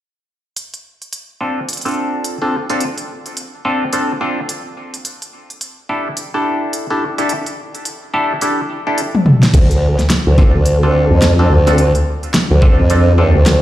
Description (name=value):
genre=glitch hop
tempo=107 BPM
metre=4/4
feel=swing 61% on 16ths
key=D minor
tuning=A4 = 440 Hz
part: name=pop drum kit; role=drums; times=0.6-13.6 s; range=crash cymbal, hi-hat, snare drum, toms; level=-17 LUFS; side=equal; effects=none
part: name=bright clav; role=stabs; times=1.4-13.4 s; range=C4 to A4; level=-19 LUFS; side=equal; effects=phaser, sidechain pumping, low-pass filter, tape echo
part: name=formant-sweep wobble bass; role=bass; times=9.5-13.6 s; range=D2 to F2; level=-10 LUFS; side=equal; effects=chorus
part: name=electronic kick drum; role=drums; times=9.5-12.8 s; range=none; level=-10 LUFS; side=equal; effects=none
room=light reverb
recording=played on a big sound system in a bare room, large studio reverb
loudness=-12 LUFS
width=side -14 dB against mid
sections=0.6-9.5 A section; 9.5-13.6 B section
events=drum fill 9.1-9.5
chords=0.6 Dm7; 5.0 A7sus4; 9.5 Dm7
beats=| 0.56 1.12 1.69 2.25 | 2.81 3.37 3.93 4.49 | 5.05 5.61 6.17 6.73 | 7.29 7.85 8.41 8.97 | 9.54 10.10 10.66 11.22 | 11.78 12.34 12.90 13.46